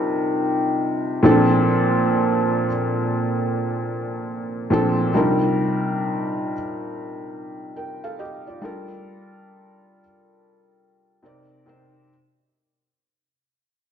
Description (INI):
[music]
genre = hip hop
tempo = 69 BPM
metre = 4/4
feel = swing 64% on 16ths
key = C dorian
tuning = A4 = 437 Hz
[part]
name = felt-muted upright piano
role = solo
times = 0.0-12.1 s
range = Bb2 to G5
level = -20 LUFS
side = equal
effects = low-pass filter
[sound]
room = wet recital hall reverb, RT60 1.7 s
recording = none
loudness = -18 LUFS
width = side -8 dB against mid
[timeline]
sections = 0.0-12.1 A section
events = fade-out 0.0-12.1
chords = 0.0 Cm11; 1.2 Bbmaj9; 5.2 Cm11; 8.6 Gm9; 11.2 Cm9